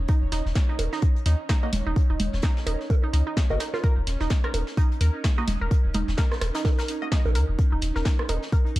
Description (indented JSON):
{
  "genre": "minimal techno",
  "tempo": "128 BPM",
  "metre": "4/4",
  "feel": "swing 58% on 16ths",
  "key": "unclear",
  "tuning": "A4 = 440 Hz",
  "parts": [
    { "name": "punchy sub bass", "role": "bass", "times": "0.0-8.8 s", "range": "Eb1 to Eb2", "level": "-24 LUFS", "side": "equal", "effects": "sidechain pumping" },
    { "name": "pulsing gated texture", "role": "texture", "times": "0.0-8.8 s", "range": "Db4 to Db5", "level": "-38 LUFS", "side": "right 2 dB", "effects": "chorus, built-in reverb, sidechain pumping" },
    { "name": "resonant blip pluck", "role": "riff", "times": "0.1-8.6 s", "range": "Eb4 to Bb4", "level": "-33 LUFS", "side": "right 3 dB", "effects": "chorus, sidechain pumping, digital delay" },
    { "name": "electronic kick drum", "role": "drums", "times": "0.1-8.6 s", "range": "none", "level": "-22 LUFS", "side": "equal", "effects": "none" },
    { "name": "vintage brush drum kit", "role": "drums", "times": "0.1-8.8 s", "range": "hi-hat, snare drum", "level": "-40 LUFS", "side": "left 2 dB", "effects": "sidechain pumping on hats, high-pass filter on hats, high-pass filter on snare, high-pass filter on room" },
    { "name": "techno drum kit", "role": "drums", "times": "0.3-8.8 s", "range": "hi-hat, snare drum", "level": "-33 LUFS", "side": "equal", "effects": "none" },
    { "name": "electronic bongos, congas and rim click", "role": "percussion", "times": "0.8-8.4 s", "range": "none", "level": "-31 LUFS", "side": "right 2 dB", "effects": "tape echo" },
    { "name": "filtered dub chord stab", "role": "stabs", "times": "1.6-7.1 s", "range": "Bb3 to Eb5", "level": "-35 LUFS", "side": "equal", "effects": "phaser, lush chorus, cassette tape, tape echo" }
  ],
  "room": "little or no reverb",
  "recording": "dark, warm production",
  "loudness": "-22 LUFS",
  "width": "side -17 dB against mid",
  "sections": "0.0-8.8 A section",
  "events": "none",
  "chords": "0.0 Eb5"
}